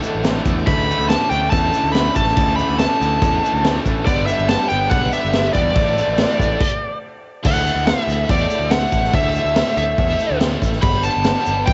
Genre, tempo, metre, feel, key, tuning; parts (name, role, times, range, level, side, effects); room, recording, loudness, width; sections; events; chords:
indie rock; 142 BPM; 4/4; straight; A4 = 440 Hz
warm bass clarinet; second line; 0.0-11.7 s; A3 to E4; -32 LUFS; equal
ensemble organ-string; sustained chords; 0.0-11.7 s; A4 to D6; -38 LUFS; equal
biting overdriven guitar; riff; 0.0-11.7 s; G2 to A4; -30 LUFS; equal; tremolo
crunchy overdriven guitar; riff; 0.0-6.6 s; G2 to D4; -29 LUFS; equal; lush chorus, tape echo
tube shaker; percussion; 0.0-11.7 s; -44 LUFS; equal
modern bright picked electric bass; bass; 0.1-11.7 s; G1 to E2; -25 LUFS; equal
vintage drum kit; drums; 0.2-11.7 s; crash cymbal, kick drum, snare drum; -22 LUFS; equal; cassette tape
bluesy overdriven lead guitar; melody; 0.7-11.7 s; D5 to B5; -22 LUFS; equal; distortion, cassette tape, tape echo
light reverb, studio ambience; home recording on cassette, nothing above 7.9 kHz; -18 LUFS; mono
0.0-7.4 A section; 7.4-11.7 A section
stop 6.6-7.4
0.0 Asus4; 4.1 G; 5.8 Asus4; 10.8 G